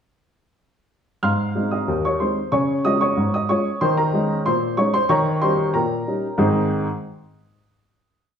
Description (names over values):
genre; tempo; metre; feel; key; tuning
ragtime piano; 93 BPM; 2/4; straight; Ab major; A4 = 441 Hz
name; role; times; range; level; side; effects
warm upright piano; solo; 1.2-6.9 s; Eb2 to F6; -18 LUFS; equal; none
room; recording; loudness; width
wet studio reverb, RT60 0.9 s; heard from further back in the room; -18 LUFS; side -7 dB against mid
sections
1.2-6.4 A section; 6.4-7.7 final chord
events
none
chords
1.2 Ab; 2.5 Db; 3.8 Eb7sus4; 5.1 Eb7; 6.4 Ab